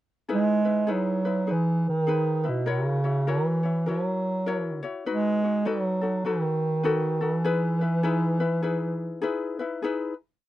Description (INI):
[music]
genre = Hawaiian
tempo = 101 BPM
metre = 4/4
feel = swing 62% on 8ths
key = E major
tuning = A4 = 445 Hz
[part]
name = mellow bass clarinet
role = melody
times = 0.3-9.2 s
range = B2 to G#3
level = -24 LUFS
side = right 2 dB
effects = none
[part]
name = ukulele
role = accompaniment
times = 0.3-10.1 s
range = D#4 to C#5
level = -29 LUFS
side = left 4 dB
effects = none
[sound]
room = light reverb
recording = dry, close 1970s-style studio recording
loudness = -24 LUFS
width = side -14 dB against mid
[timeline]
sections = 0.3-9.8 A section; 9.8-10.5 final chord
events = none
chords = 0.3 Emaj7; 2.7 F#7; 5.1 B7; 7.4 Emaj7